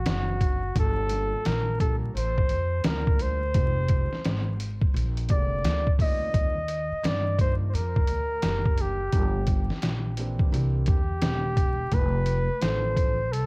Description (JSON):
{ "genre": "hip hop, jazz-hop", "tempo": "86 BPM", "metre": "4/4", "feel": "swing 64% on 16ths", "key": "unclear", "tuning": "A4 = 439 Hz", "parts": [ { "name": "warm flugelhorn", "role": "melody", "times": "0.0-13.5 s", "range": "F#4 to Eb5", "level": "-30 LUFS", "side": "equal", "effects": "cassette tape, analog delay" }, { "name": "upright bass", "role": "bass", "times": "0.0-13.5 s", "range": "E1 to G2", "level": "-28 LUFS", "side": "equal", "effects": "transformer saturation" }, { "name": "dark baby grand piano", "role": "accompaniment", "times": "0.1-13.2 s", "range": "C3 to Bb4", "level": "-38 LUFS", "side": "right 2 dB", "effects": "cassette tape" }, { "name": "trip hop sampler-style drum kit", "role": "drums", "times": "0.1-13.5 s", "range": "hi-hat, kick drum, snare drum", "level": "-25 LUFS", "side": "equal", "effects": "cassette tape" } ], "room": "light reverb", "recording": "home recording on cassette, vinyl crackle", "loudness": "-23 LUFS", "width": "side -30 dB against mid", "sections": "0.0-13.5 A section", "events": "none", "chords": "0.0 D7b9; 0.8 Gm9; 3.6 Fm9; 4.9 Bb13; 6.3 Ebmaj9; 9.1 Gm7; 10.5 C9; 11.9 F6" }